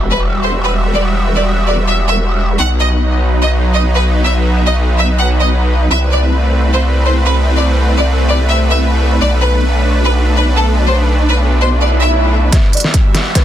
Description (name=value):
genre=heavy wobble dubstep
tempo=145 BPM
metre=4/4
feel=swing 54% on 16ths, half-time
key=E minor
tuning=A4 = 440 Hz
part: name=supersaw pad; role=sustained chords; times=0.0-13.4 s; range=F#3 to E5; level=-19 LUFS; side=right 1 dB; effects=sidechain pumping
part: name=growl bass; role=bass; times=0.0-12.5 s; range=E1 to C2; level=-12 LUFS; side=equal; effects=distortion, chorus, overdrive
part: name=sub drop, swell and riser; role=sound effects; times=0.0-0.9, 11.9-13.4 s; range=none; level=-22 LUFS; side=equal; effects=none
part: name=clear studio violin section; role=melody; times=0.1-13.4 s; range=A4 to F#5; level=-18 LUFS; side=equal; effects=low-pass filter, ping-pong delay
part: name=dubstep drum kit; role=drums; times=12.5-13.4 s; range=hi-hat, snare drum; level=-17 LUFS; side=right 1 dB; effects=low-pass filter on hats, low-pass filter on cymbals, soft clipping on snare, low-pass filter on snare, low-pass filter on toms
part: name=electronic kick drum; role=drums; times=12.5-13.4 s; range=none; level=-11 LUFS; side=equal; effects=none
room=little or no reverb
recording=dense, heavily limited modern master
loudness=-10 LUFS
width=side -11 dB against mid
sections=0.0-12.5 A section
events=impact 0.0-0.9; swell 11.9-12.5; drum fill 12.5-13.4; riser 12.5-13.4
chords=0.0 Emadd9; 2.6 B; 5.9 Amadd9/C; 9.2 Bm7; 12.5 Emadd9